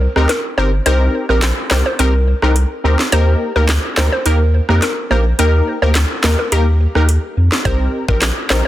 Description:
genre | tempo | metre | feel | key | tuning
dancehall | 106 BPM | 4/4 | straight | C minor | A4 = 440 Hz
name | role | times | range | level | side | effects
hollow square pluck | melody | 0.0-8.7 s | G4 to C5 | -21 LUFS | equal | chorus, tape echo
saturated sub bass | bass | 0.0-8.6 s | G1 to F2 | -14 LUFS | equal | none
synth brass stab | accompaniment | 0.2-8.6 s | Bb3 to Bb4 | -20 LUFS | left 1 dB | chorus
island pop drum kit | drums | 0.2-8.6 s | handclaps, hi-hat, kick drum, rim click, snare drum | -18 LUFS | equal | none
room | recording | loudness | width
digital ambience | dense, heavily limited modern master | -12 LUFS | side -14 dB against mid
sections
0.0-8.7 A section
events
break 0.0-7.7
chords
0.0 Cm7; 3.1 Eb; 7.7 Cm7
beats
0.29 | 0.86 1.43 1.99 2.56 | 3.12 3.69 4.26 4.82 | 5.39 5.95 6.52 7.09 | 7.65 8.22

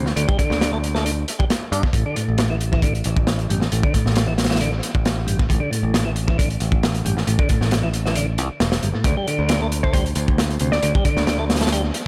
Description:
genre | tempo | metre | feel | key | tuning
breakbeat, breaks | 135 BPM | 4/4 | straight | unclear | A4 = 440 Hz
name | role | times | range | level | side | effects
tonewheel organ | riff | 0.0-11.8 s | G2 to D4 | -27 LUFS | equal | overdrive, vintage 12-bit sampler grit, tape echo
modern bright picked electric bass | bass | 0.0-11.9 s | E1 to G2 | -25 LUFS | equal | none
crunchy breakbeat drum kit | drums | 0.1-12.1 s | hi-hat, kick drum, snare drum | -23 LUFS | equal | tape echo
mallet-like synth pluck | melody | 9.8-11.2 s | C5 to D5 | -31 LUFS | equal | chorus, telephone sound, cassette tape, tape echo
room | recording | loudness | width
light reverb, small room reverb | echo-heavy mix | -20 LUFS | mono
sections
0.0-12.1 A section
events
kick drops out 8.2-9.1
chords
0.0 D5; 1.9 A5; 9.1 D5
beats
| 0.17 0.61 1.05 1.50 | 1.94 2.39 2.83 3.28 | 3.72 4.17 4.61 5.05 | 5.50 5.94 6.39 6.83 | 7.28 7.72 8.16 8.61 | 9.05 9.50 9.94 10.39 | 10.83 11.28 11.72

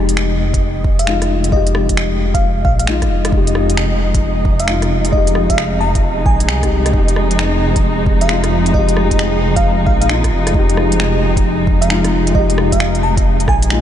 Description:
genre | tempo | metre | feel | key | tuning
future garage | 133 BPM | 4/4 | swing 64% on 16ths | F minor | A4 = 436 Hz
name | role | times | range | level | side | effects
felt-muted upright piano | accompaniment | 0.0-13.8 s | Ab3 to G4 | -20 LUFS | left 4 dB | sidechain pumping, low-pass filter, diffuse ambient delay
dark detuned saw bass | bass | 0.0-13.8 s | F1 to C2 | -18 LUFS | equal | sidechain pumping
flickering grainy texture | texture | 0.1-13.8 s | Eb5 | -28 LUFS | right 2 dB | built-in reverb
organic electronic drum kit | drums | 0.1-13.8 s | finger snaps, hi-hat, rim click | -23 LUFS | equal | none
electronic kick drum | drums | 0.5-13.6 s | none | -17 LUFS | equal | overdrive
bell-like FM electric piano | melody | 1.0-13.8 s | Eb5 to Bb5 | -22 LUFS | equal | chorus, phaser, ping-pong delay
muted chamber string section | sustained chords | 3.3-13.8 s | C3 to Eb4 | -21 LUFS | right 1 dB | sidechain pumping
room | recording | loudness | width
moderate huge ambient reverb, RT60 4.1 s | dreamy mix soaked in reverb, nothing above 10.8 kHz | -12 LUFS | side -10 dB against mid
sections
0.0-13.8 A section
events
none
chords
0.0 Fm7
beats
0.17 0.62 1.07 | 1.52 1.97 2.42 2.88 | 3.33 3.78 4.23 4.68 | 5.13 5.58 6.03 6.49 | 6.94 7.39 7.84 8.29 | 8.74 9.19 9.64 10.09 | 10.55 11.00 11.45 11.90 | 12.35 12.80 13.25 13.70

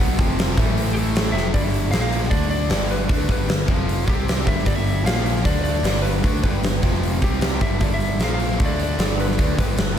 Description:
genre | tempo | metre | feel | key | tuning
hard rock | 153 BPM | 4/4 | straight | unclear | A4 = 440 Hz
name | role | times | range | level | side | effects
distorted electric guitar | riff | 0.0-10.0 s | F2 to D4 | -28 LUFS | left 9 dB | overdrive
distorted electric guitar | riff | 0.0-10.0 s | F2 to D4 | -28 LUFS | right 9 dB | overdrive, slapback echo
fuzz picked electric bass | bass | 0.0-10.0 s | F1 to D2 | -24 LUFS | equal | overdrive
huge arena drum kit | drums | 0.0-9.9 s | hi-hat, kick drum, snare drum | -21 LUFS | equal | none
lightly driven lead guitar | melody | 0.9-10.0 s | G4 to F5 | -28 LUFS | left 1 dB | slapback echo, analog delay
room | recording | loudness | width
light reverb, small room ambience | none | -18 LUFS | side -9 dB against mid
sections
0.0-1.5 A section; 1.5-10.0 B section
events
drum fill 1.3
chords
0.2 F5; 0.6 A5; 1.3 F5; 1.5 G5; 1.9 Bb5; 2.3 D5; 2.7 G; 3.7 F5; 4.1 C5; 4.5 G5; 5.1 Bb5; 5.5 D5; 5.8 G; 6.8 F5; 7.2 C5; 7.6 G5; 8.2 Bb5; 8.6 D5; 9.0 G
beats
0.38 0.76 1.15 | 1.54 1.93 2.32 2.71 | 3.10 3.49 3.88 4.28 | 4.67 5.06 5.45 5.85 | 6.24 6.63 7.03 7.42 | 7.81 8.21 8.60 8.99 | 9.39 9.78

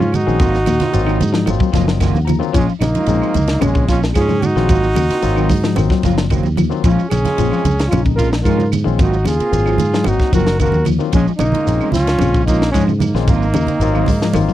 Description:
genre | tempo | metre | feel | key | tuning
afrobeat | 112 BPM | 4/4 | straight | unclear | A4 = 440 Hz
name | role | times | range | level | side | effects
breathy trombone | melody | 0.0-14.5 s | Db4 to Bb4 | -20 LUFS | equal | none
clear trumpet | second line | 0.0-14.5 s | Ab3 to Gb4 | -25 LUFS | right 4 dB | none
electric guitar at the edge of break-up | arpeggios | 0.0-14.5 s | Bb2 to Ab3 | -21 LUFS | left 7 dB | wide subtle chorus
electric guitar at the edge of break-up | stabs | 0.0-14.5 s | F3 to F4 | -24 LUFS | right 7 dB | analog chorus
fingered electric bass | bass | 0.0-14.5 s | Gb1 to Ab2 | -18 LUFS | equal | none
congas | percussion | 0.0-14.5 s | none | -21 LUFS | right 5 dB | none
shekere | percussion | 0.0-14.5 s | none | -27 LUFS | right 2 dB | none
tight funk drum kit | drums | 0.1-14.5 s | hi-hat, kick drum, ride cymbal, snare drum, toms | -19 LUFS | equal | none
claves | percussion | 0.1-14.5 s | none | -36 LUFS | right 14 dB | none
barky tine electric piano | accompaniment | 0.3-14.5 s | Gb3 to Bb5 | -24 LUFS | left 11 dB | overdrive
room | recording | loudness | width
little or no reverb | dry, close 1970s-style studio recording | -13 LUFS | side -13 dB against mid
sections
0.0-14.5 A section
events
tine electric piano fill 1.5-2.6; drum fill 14.4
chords
0.4 Ab13; 2.6 Bbm7; 4.7 Ab13; 6.8 Bbm7; 9.0 Ab13; 11.1 Bbm7; 13.3 Ab13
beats
| 0.41 0.95 1.48 2.02 | 2.56 3.09 3.63 4.16 | 4.70 5.24 5.77 6.31 | 6.85 7.38 7.92 8.46 | 8.99 9.53 10.06 10.60 | 11.14 11.67 12.21 12.75 | 13.28 13.82 14.36

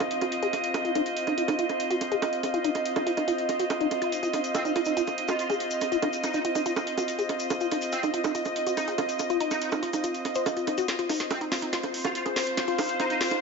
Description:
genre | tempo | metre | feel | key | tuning
psychedelic trance | 142 BPM | 4/4 | straight | unclear | A4 = 440 Hz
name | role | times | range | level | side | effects
evolving wavetable pad | sustained chords | 0.0-13.4 s | C5 to Eb5 | -30 LUFS | right 2 dB | chorus, built-in reverb
garage drum kit | drums | 0.0-13.4 s | bongos, hi-hat, snare drum | -32 LUFS | right 4 dB | overdrive, small room ambience
downlifter and riser | sound effects | 0.0-0.7, 11.6-13.4 s | none | -44 LUFS | left 2 dB | none
airy breathy pad | texture | 0.0-13.4 s | C4 to F5 | -34 LUFS | left 2 dB | chorus
woody wave-folded pluck | riff | 0.2-13.4 s | Eb4 to C5 | -30 LUFS | moving between left 8 dB and right 5 dB | chorus, auto-pan, digital delay
egg shaker | percussion | 4.1-10.9 s | none | -41 LUFS | left 7 dB | none
metallic wobble bass | second line | 4.5-13.2 s | C4 to F4 | -36 LUFS | right 1 dB | ensemble chorus, high-pass filter, digital delay
room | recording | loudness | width
moderate plate reverb, RT60 1.6 s, digital ambience | nothing above 7.6 kHz | -25 LUFS | side -4 dB against mid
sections
0.0-10.9 A section; 10.9-13.4 B section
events
build-up 10.9-13.4; drum fill 10.9-13.4; filter sweep on synth arpeggio sound 10.9-13.4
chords
0.0 F5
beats
0.32 | 0.74 1.17 1.59 2.01 | 2.43 2.85 3.28 3.70 | 4.12 4.55 4.97 5.39 | 5.81 6.24 6.66 7.08 | 7.50 7.93 8.35 8.77 | 9.19 9.62 10.04 10.46 | 10.88 11.31 11.73 12.15 | 12.57 13.00

